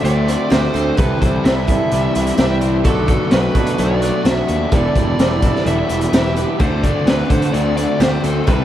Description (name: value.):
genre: rock, shoegaze and dream pop.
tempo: 128 BPM.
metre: 4/4.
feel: straight.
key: D mixolydian.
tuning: A4 = 440 Hz.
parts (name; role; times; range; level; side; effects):
fuzz lead guitar; melody; 0.0-8.6 s; A4 to E5; -23 LUFS; equal; distortion, tape echo.
picked twelve-string acoustic guitar; arpeggios; 0.0-8.6 s; F#4 to C5; -30 LUFS; right 3 dB; wide subtle chorus, tape echo.
electric guitar through a small old amp; riff; 0.0-8.6 s; E2 to F#4; -22 LUFS; right 5 dB; reverse reverb.
overdriven semi-hollow guitar; riff; 0.0-8.6 s; E2 to G4; -23 LUFS; left 7 dB; lush chorus.
fuzz picked electric bass; bass; 0.0-8.6 s; E1 to D3; -20 LUFS; equal; overdrive.
raw garage drum kit; drums; 0.0-8.6 s; hi-hat, kick drum, snare drum; -18 LUFS; equal; none.
biting overdriven guitar; riff; 6.6-8.6 s; C3 to D4; -23 LUFS; left 1 dB; none.
room: moderate lush hall reverb, RT60 1.6 s, studio ambience.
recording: dreamy mix soaked in reverb, vinyl crackle.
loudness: -14 LUFS.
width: side -11 dB against mid.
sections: 0.0-8.6 A section.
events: none.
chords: 0.0 D7sus4; 1.0 C; 2.8 Bm7; 4.7 Em7; 6.6 D7sus4.